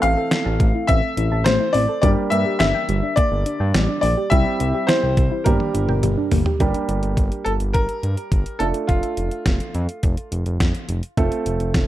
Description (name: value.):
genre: synth-pop.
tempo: 105 BPM.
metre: 4/4.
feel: straight.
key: G dorian.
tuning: A4 = 441 Hz.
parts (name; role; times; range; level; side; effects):
bright baby grand piano; melody; 0.0-10.8 s; F4 to F5; -23 LUFS; left 2 dB; analog delay.
warm grand piano; accompaniment; 0.0-11.9 s; E3 to A4; -26 LUFS; right 4 dB; none.
soft round pluck; arpeggios; 0.0-6.6 s; G3 to A5; -26 LUFS; left 1 dB; chorus, analog delay.
smooth synth bass; bass; 0.0-11.9 s; F1 to G2; -22 LUFS; equal; none.
detuned 8-bit digital drum machine; drums; 0.0-11.9 s; hi-hat, kick drum, snare drum, toms; -21 LUFS; equal; gated reverb.
room: light reverb.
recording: none.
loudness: -17 LUFS.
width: side -14 dB against mid.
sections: 0.0-6.6 A section; 6.6-11.9 B section.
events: drum fill 5.5-6.6.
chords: 0.0 Am; 2.0 Gm; 4.3 C; 5.5 Gm; 8.6 Dm/F; 11.2 F.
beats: 0.32 0.89 1.46 | 2.03 2.60 3.17 3.74 | 4.32 4.89 5.46 6.03 | 6.60 7.17 7.74 8.32 | 8.89 9.46 10.03 10.60 | 11.17 11.74.